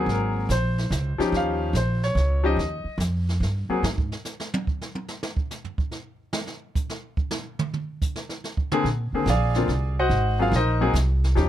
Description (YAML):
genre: jazz piano trio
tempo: 144 BPM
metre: 3/4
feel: swing 67% on 8ths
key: unclear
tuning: A4 = 441 Hz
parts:
  - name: clear baby grand piano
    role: melody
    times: 0.0-3.8, 8.7-11.5 s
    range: D3 to Ab5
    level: -24 LUFS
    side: left 2 dB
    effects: none
  - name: upright bass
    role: bass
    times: 0.0-4.1, 8.8-11.5 s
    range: Ab1 to Bb2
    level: -23 LUFS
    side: right 1 dB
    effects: none
  - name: jazz brush drum kit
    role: drums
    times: 0.1-11.5 s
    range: brushed snare drum, hi-hat, kick drum, snare drum, toms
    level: -29 LUFS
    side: right 2 dB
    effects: none
room: little or no reverb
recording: close, detailed microphones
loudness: -22 LUFS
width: side -12 dB against mid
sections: 0.0-11.5 A section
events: grand piano solo 0.0-11.5; drum solo 3.8-8.9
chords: 0.1 Ab9; 1.3 Eb9; 3.8 N.C.; 8.9 Bb9; 10.1 Ab9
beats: | 0.08 0.50 0.92 | 1.33 1.75 2.17 | 2.59 3.00 3.42 | 3.84 4.26 4.67 | 5.09 5.51 5.93 | 6.35 6.76 7.18 | 7.60 8.02 8.44 | 8.86 9.27 9.69 | 10.11 10.53 10.94 | 11.36